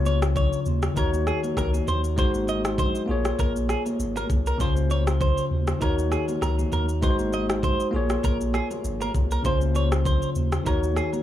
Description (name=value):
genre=afrobeats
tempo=99 BPM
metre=4/4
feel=swing 55% on 16ths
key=unclear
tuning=A4 = 445 Hz
part: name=bell-like tine electric piano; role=accompaniment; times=0.0-11.2 s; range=Db3 to Db5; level=-26 LUFS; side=left 3 dB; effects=none
part: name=punchy sub bass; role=bass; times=0.0-11.0 s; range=Ab1 to Eb2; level=-26 LUFS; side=equal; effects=none
part: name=direct-recorded clean electric guitar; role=riff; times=0.1-11.1 s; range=Ab4 to Eb5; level=-30 LUFS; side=right 3 dB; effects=wide subtle chorus, tape echo
part: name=afro-pop drum kit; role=drums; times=0.1-11.2 s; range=kick drum, rim click, shaker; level=-27 LUFS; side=equal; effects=none
part: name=congas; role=percussion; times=0.1-11.2 s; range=none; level=-35 LUFS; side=right 1 dB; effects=none
room=little or no reverb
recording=dry, gritty hardware recording, small room ambience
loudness=-22 LUFS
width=side -12 dB against mid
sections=0.0-11.2 A section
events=none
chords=0.0 Db; 1.0 Ebm7; 2.2 Ab7; 3.1 Bbm7; 4.6 Dbmaj7; 5.8 Ebm7; 7.0 Ab7; 7.9 Bbm7; 9.4 Dbmaj7; 10.7 Ebm7